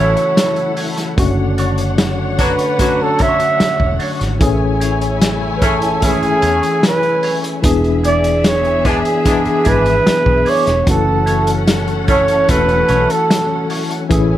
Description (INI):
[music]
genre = lush 1970s-style soul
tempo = 74 BPM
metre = 4/4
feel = straight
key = unclear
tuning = A4 = 440 Hz
[part]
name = breathy flugelhorn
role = melody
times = 0.0-13.7 s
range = G#4 to E5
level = -16 LUFS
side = right 2 dB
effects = none
[part]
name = muted studio string section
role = second line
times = 0.0-14.4 s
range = B3 to G#5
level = -24 LUFS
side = left 3 dB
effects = none
[part]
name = tine electric piano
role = accompaniment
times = 0.0-14.4 s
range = D3 to G#4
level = -20 LUFS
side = left 3 dB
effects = overdrive, fast stereo tremolo
[part]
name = mellow French horn section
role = sustained chords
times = 0.0-14.4 s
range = D3 to A4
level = -28 LUFS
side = equal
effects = none
[part]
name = semi-hollow electric guitar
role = riff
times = 0.0-13.9 s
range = D4 to D5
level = -26 LUFS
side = right 2 dB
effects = wah, phaser
[part]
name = clear horn section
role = stabs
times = 0.0-13.1 s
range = F#3 to F#4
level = -23 LUFS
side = left 1 dB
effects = none
[part]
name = vintage muted fingered electric bass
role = bass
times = 0.0-14.4 s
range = E1 to E2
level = -19 LUFS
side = equal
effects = none
[part]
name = vintage drum kit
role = drums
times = 0.2-14.3 s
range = hi-hat, kick drum, snare drum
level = -18 LUFS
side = equal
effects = none
[sound]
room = light reverb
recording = none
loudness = -12 LUFS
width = side -12 dB against mid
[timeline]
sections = 0.0-14.4 A section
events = none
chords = 0.0 F#m7; 1.2 Dmaj7/F#; 4.4 Amaj7; 7.6 E7; 10.9 F#m7